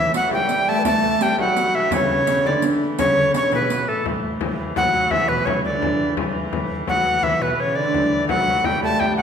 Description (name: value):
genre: medieval dance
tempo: 113 BPM (dotted quarters)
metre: 6/8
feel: straight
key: A mixolydian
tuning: A4 = 439 Hz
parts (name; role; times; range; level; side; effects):
- bright tenor recorder; melody; 0.0-9.2 s; A4 to A5; -19 LUFS; equal; none
- dark viola da gamba; second line; 0.0-9.2 s; A2 to A3; -27 LUFS; left 3 dB; none
- lute; second line; 0.0-9.2 s; A2 to B3; -26 LUFS; right 3 dB; none
- rich hurdy-gurdy; drone; 0.0-9.2 s; A2 to E3; -29 LUFS; right 1 dB; none
- riq; percussion; 0.1-3.9 s; none; -29 LUFS; right 6 dB; none
- frame drum; percussion; 0.3-9.2 s; none; -27 LUFS; left 4 dB; none
room: wet recital hall reverb, RT60 1.5 s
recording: recorded in a church or concert hall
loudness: -17 LUFS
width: side -7 dB against mid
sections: 0.0-4.1 A section; 4.1-9.2 B section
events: none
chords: none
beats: 0.33 | 0.86 1.39 | 1.92 2.46 | 2.99 3.52 | 4.05 4.59 | 5.12 5.65 | 6.18 6.71 | 7.24 7.77 | 8.30 8.83